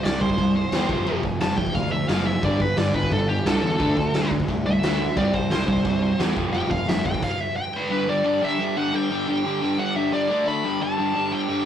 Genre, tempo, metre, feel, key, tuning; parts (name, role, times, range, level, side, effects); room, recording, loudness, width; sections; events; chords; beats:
punk rock; 175 BPM; 4/4; straight; G major; A4 = 440 Hz
high-gain lead guitar; melody; 0.0-11.7 s; G4 to B5; -26 LUFS; equal; distortion
crunchy overdriven guitar; riff; 0.0-11.7 s; F2 to D4; -25 LUFS; equal
fuzz picked electric bass; bass; 0.0-7.2 s; F1 to E2; -24 LUFS; equal; overdrive
raw garage drum kit; drums; 0.0-7.3 s; crash cymbal, kick drum, snare drum; -26 LUFS; equal
light reverb; rough rehearsal-room recording, tube saturation; -20 LUFS; side -9 dB against mid
0.0-7.9 A section; 7.9-11.7 B section
lead electric guitar solo 0.0-7.9; stop 7.2-7.9
0.0 C; 0.9 F5; 2.4 G5; 3.8 D5; 5.2 C5; 6.4 F5; 7.9 G5; 10.3 D5; 10.6 G5
0.03 0.38 0.72 | 1.06 1.40 1.75 2.09 | 2.43 2.77 3.12 3.46 | 3.80 4.14 4.49 4.83 | 5.17 5.51 5.86 6.20 | 6.54 6.88 7.23 7.57 | 7.91 8.25 8.59 8.93 | 9.27 9.62 9.96 10.30 | 10.64 10.98 11.32